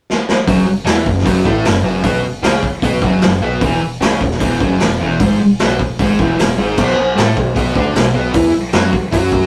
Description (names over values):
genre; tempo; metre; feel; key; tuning
garage rock duo or trio; 152 BPM; 4/4; straight; unclear; A4 = 440 Hz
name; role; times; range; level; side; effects
crunchy breakbeat drum kit; drums; 0.1-9.4 s; crash cymbal, hi-hat, kick drum, snare drum; -18 LUFS; equal; none
fuzz guitar; riff; 0.5-9.5 s; E2 to A4; -18 LUFS; equal; distortion
gritty driven synth bass; bass; 0.5-9.5 s; E1 to A2; -22 LUFS; equal; none
room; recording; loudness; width
moderate studio reverb, RT60 0.5 s; rough rehearsal-room recording, tube saturation; -14 LUFS; mono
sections
0.5-9.5 A section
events
drum fill 0.1-0.5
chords
0.5 F#5; 3.6 E5; 6.8 B5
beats
0.08 | 0.47 0.86 1.26 1.65 | 2.04 2.44 2.83 3.23 | 3.62 4.01 4.41 4.80 | 5.20 5.59 5.98 6.38 | 6.77 7.16 7.56 7.95 | 8.34 8.74 9.13